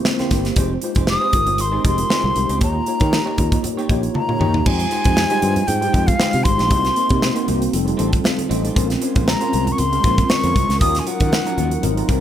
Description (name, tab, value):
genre	polished 1980s jazz-funk pop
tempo	117 BPM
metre	4/4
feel	swing 54% on 16ths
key	unclear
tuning	A4 = 438 Hz
part	mellow tine electric piano	accompaniment	0.0-12.2 s	F3 to Bb5	-22 LUFS	left 1 dB	medium stereo tremolo, ensemble chorus
part	electric guitar through a small old amp	riff	0.1-12.2 s	Gb3 to Db5	-29 LUFS	right 4 dB	lush chorus
part	modern studio drum kit	drums	0.1-12.2 s	crash cymbal, hi-hat, kick drum, snare drum, toms	-20 LUFS	equal	none
part	congas	percussion	0.1-12.2 s	none	-33 LUFS	right 2 dB	none
part	fretless electric bass	bass	0.3-12.2 s	F1 to Eb3	-22 LUFS	equal	none
part	breathy concert flute	melody	1.1-11.8 s	F5 to Eb6	-21 LUFS	left 1 dB	none
room	light reverb, small room ambience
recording	none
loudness	-16 LUFS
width	side -10 dB against mid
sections	0.0-4.7 A section; 4.7-12.2 B section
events	tine electric piano fill 3.9-4.7, 7.7-8.8; drum fill 4.2-4.7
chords	0.0 C7; 0.6 Fm7; 2.6 Eb7; 4.7 Fm9; 6.7 Cm7b5; 7.7 F7; 8.8 Bbm9; 10.8 Ebm9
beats	0.06 | 0.57 1.08 1.59 2.11 | 2.62 3.13 3.64 4.15 | 4.67 5.18 5.69 6.20 | 6.71 7.23 7.74 8.25 | 8.76 9.27 9.79 10.30 | 10.81 11.32 11.83